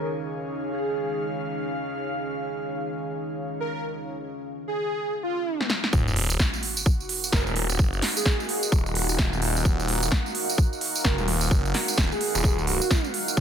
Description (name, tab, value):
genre	bass house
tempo	129 BPM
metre	4/4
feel	swing 61% on 16ths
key	Eb minor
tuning	A4 = 440 Hz
part	airy dreamy lead	melody	0.0-13.0 s	F4 to Bb4	-30 LUFS	right 1 dB	chorus, digital delay
part	deep dark ambient pad	sustained chords	0.0-13.4 s	Eb3 to Gb5	-33 LUFS	equal	chorus, built-in reverb, sidechain pumping
part	airy breathy pad	texture	0.0-13.4 s	Eb4 to F5	-35 LUFS	right 1 dB	chorus, sidechain pumping
part	big-room dance drum kit	drums	5.6-13.3 s	hi-hat, snare drum	-27 LUFS	right 1 dB	overdrive
part	phased detuned saw bass	bass	5.9-13.4 s	Eb1 to Gb1	-26 LUFS	equal	phaser, tube saturation, sidechain pumping
part	electronic kick drum	drums	5.9-13.4 s	none	-22 LUFS	equal	none
part	tambourine	percussion	5.9-13.4 s	none	-31 LUFS	right 4 dB	none
part	sub drop	sound effects	5.9-7.8 s	none	-32 LUFS	left 1 dB	none
room	little or no reverb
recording	none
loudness	-23 LUFS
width	side -8 dB against mid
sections	0.0-5.9 A section; 5.9-13.4 B section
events	drum fill 5.6-5.9; drop 5.9-13.4; impact 5.9-7.8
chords	0.0 Db/Eb; 5.9 Ebmadd9